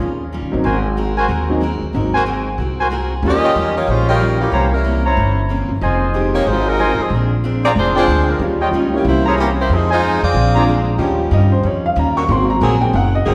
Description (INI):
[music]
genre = jazz, big band swing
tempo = 186 BPM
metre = 4/4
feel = swing 62% on 8ths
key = Eb mixolydian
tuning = A4 = 440 Hz
[part]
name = picked steel-string acoustic guitar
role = accompaniment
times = 0.0-13.3 s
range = F2 to Bb4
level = -28 LUFS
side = equal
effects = none
[part]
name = upright bass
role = bass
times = 0.0-13.3 s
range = F1 to G2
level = -20 LUFS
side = equal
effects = none
[part]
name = clear upright piano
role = accompaniment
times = 0.5-3.4, 6.1-13.3 s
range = F3 to Db6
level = -22 LUFS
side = equal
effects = none
[part]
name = clear trumpet section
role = stabs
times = 0.6-10.6 s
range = E4 to Bb5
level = -24 LUFS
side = equal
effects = none
[part]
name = clear saxophone section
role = melody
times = 3.3-10.8 s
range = Fb3 to Eb5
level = -20 LUFS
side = equal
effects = none
[part]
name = mellow saxophone section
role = sustained chords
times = 11.0-13.3 s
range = F3 to Ab4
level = -27 LUFS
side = equal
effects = none
[sound]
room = wet scoring stage reverb, RT60 1.9 s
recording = recorded in a church or concert hall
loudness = -16 LUFS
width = mono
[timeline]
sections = 0.0-11.0 A section; 11.0-13.3 B section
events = upright piano solo 11.0-13.3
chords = 0.0 Eb9; 0.6 Ab9; 3.2 Eb9; 4.5 C7b9; 5.8 Fm7; 7.1 Bb9; 8.4 Eb9; 9.1 C7b9; 9.7 Fm7; 10.3 Bb9; 11.0 Eb9; 12.3 Ab9